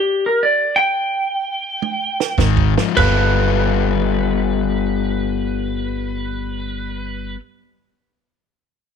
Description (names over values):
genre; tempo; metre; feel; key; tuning
electric blues shuffle; 99-120 BPM; 4/4; swing 66% on 8ths; G mixolydian; A4 = 440 Hz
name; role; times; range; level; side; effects
clean lap steel guitar; melody; 0.0-7.3 s; G4 to G5; -20 LUFS; right 1 dB; none
compact cocktail drum kit; drums; 1.8-3.2 s; crash cymbal, kick drum, snare drum, toms; -22 LUFS; right 8 dB; none
overdriven semi-hollow guitar; riff; 2.4-7.4 s; Ab2 to A4; -20 LUFS; left 14 dB; none
upright bass; bass; 2.4-7.3 s; G1 to Ab1; -21 LUFS; right 2 dB; none
room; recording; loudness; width
small room ambience; 1960s-style stereo with parts hard left and right; -16 LUFS; side -7 dB against mid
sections
0.0-3.0 A section; 3.0-7.8 B section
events
slowing down 0.0-3.0; stop 0.0-2.4; drum fill 1.8-3.0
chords
0.0 G5; 2.4 Ab5; 3.0 G9